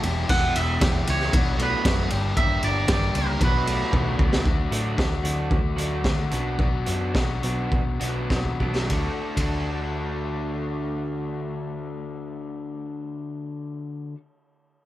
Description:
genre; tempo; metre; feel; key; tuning
indie rock; 97-116 BPM; 4/4; straight; D major; A4 = 440 Hz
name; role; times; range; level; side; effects
crunchy overdriven guitar; riff; 0.0-14.2 s; E2 to F#4; -32 LUFS; right 5 dB; lush chorus, tape echo
overdriven electric guitar; riff; 0.0-14.2 s; E2 to A4; -30 LUFS; left 6 dB; none
hollow-body short-scale picked electric bass; bass; 0.0-14.1 s; E1 to A2; -28 LUFS; equal; none
raw garage drum kit; drums; 0.0-9.5 s; crash cymbal, hi-hat, kick drum, ride cymbal, snare drum; -24 LUFS; equal; none
twangy electric guitar; melody; 0.3-4.2 s; Bb4 to F#5; -28 LUFS; right 3 dB; tape echo
room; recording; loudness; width
little or no reverb; none; -22 LUFS; side -14 dB against mid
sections
0.0-4.5 A section; 4.5-8.9 B section; 8.9-13.8 C section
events
drum fill 3.9-4.5, 8.3-8.9; slowing down 4.5-8.9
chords
0.0 Em; 1.3 Bm7; 2.1 Gm; 3.4 Bm7; 4.5 D; 6.3 Bm; 8.9 D

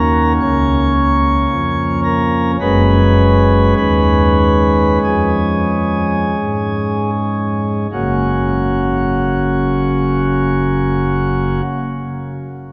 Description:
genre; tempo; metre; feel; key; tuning
classical, chorale-style piece for pipe organ; 38-57 BPM; 4/4; straight; F# major; A4 = 441 Hz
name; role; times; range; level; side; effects
pipe organ, sparkling flutes; solo; 0.0-11.6 s; F#1 to C#5; -15 LUFS; equal; none
room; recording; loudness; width
wet cathedral reverb, RT60 4.8 s; nothing above 7.5 kHz; -15 LUFS; mono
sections
0.0-7.9 A section; 7.9-12.7 B section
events
slowing down 0.0-7.9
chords
0.0 F# (rootless); 2.6 C#7/F#; 7.9 F#

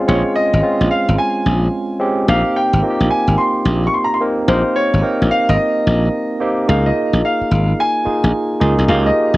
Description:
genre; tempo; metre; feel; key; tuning
R&B, new jack swing; 109 BPM; 4/4; swing 64% on 16ths; unclear; A4 = 439 Hz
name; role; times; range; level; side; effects
barky tine electric piano; accompaniment; 0.0-9.4 s; Ab3 to Bb4; -18 LUFS; right 1 dB; medium stereo tremolo, cassette tape
clear baby grand piano; melody; 0.1-9.4 s; C5 to Db6; -18 LUFS; equal; cassette tape
glassy slap bass; bass; 0.1-9.4 s; Ab1 to Db2; -15 LUFS; equal; none
room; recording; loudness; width
light reverb; home recording on cassette; -13 LUFS; side -18 dB against mid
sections
0.0-6.7 A section; 6.7-9.4 B section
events
none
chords
0.0 Bbm9; 2.3 Abmaj7 (rootless); 6.7 Db6

